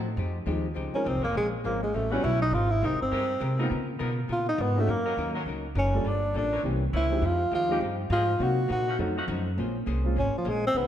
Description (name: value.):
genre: jazz, big band swing.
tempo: 204 BPM.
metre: 4/4.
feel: swing 62% on 8ths.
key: F minor.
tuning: A4 = 440 Hz.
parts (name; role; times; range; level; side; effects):
archtop guitar, miked and amplified; accompaniment; 0.0-10.9 s; A2 to C5; -36 LUFS; left 5 dB; none.
upright bass; bass; 0.0-10.9 s; F1 to Db3; -29 LUFS; equal; none.
warm baby grand piano; accompaniment; 0.5-10.2 s; E3 to Bb4; -34 LUFS; equal; none.
mellow tenor saxophone; melody; 0.9-10.9 s; F3 to Gb4; -28 LUFS; equal; none.
bright saxophone section; sustained chords; 1.2-9.3 s; E3 to B4; -38 LUFS; equal; none.
room: moderate scoring stage reverb, RT60 1.9 s.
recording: dark, warm production.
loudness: -25 LUFS.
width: side -10 dB against mid.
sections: 0.2-9.6 A section; 9.6-10.9 A section.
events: tenor saxophone solo 0.2-10.9.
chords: 0.2 Fm9; 1.4 Bbm7; 1.9 A13; 2.5 Abmaj9; 3.7 Db13; 4.9 Gb6; 6.1 Gm9; 6.6 C7b9; 7.2 Fm9; 8.4 Cm7b5; 9.0 F7b9; 9.6 Bbm9.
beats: | 0.18 0.47 0.77 1.06 | 1.35 1.65 1.94 2.24 | 2.53 2.82 3.12 3.41 | 3.71 4.00 4.29 4.59 | 4.88 5.17 5.47 5.76 | 6.05 6.35 6.64 6.94 | 7.23 7.52 7.82 8.11 | 8.40 8.70 8.99 9.29 | 9.58 9.87 10.17 10.46 | 10.76.